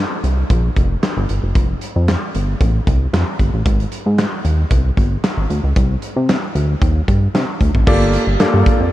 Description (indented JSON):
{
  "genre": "early-eighties boogie funk",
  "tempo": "114 BPM",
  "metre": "4/4",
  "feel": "straight",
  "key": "G minor",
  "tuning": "A4 = 440 Hz",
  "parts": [
    { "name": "chorused synth bass", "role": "bass", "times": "0.0-8.9 s", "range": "F1 to C3", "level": "-16 LUFS", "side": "equal", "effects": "none" },
    { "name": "modern studio drum kit", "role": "drums", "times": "0.2-8.8 s", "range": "crash cymbal, handclaps, hi-hat, kick drum, snare drum", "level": "-17 LUFS", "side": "equal", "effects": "none" },
    { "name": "clear grand piano", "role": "accompaniment", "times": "7.9-8.9 s", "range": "Bb3 to D5", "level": "-20 LUFS", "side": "equal", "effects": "none" }
  ],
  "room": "light reverb, small room ambience",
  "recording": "cassette tape",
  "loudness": "-14 LUFS",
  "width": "side -15 dB against mid",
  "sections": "0.0-7.9 A section; 7.9-8.9 B section",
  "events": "none",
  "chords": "0.0 Gm7; 1.6 Fadd9; 3.7 Abmaj7; 5.8 Cm; 7.9 Gm9",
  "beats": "0.50 1.03 | 1.55 2.08 2.61 3.13 | 3.66 4.19 4.71 5.24 | 5.76 6.29 6.82 7.34 | 7.87 8.40 8.92"
}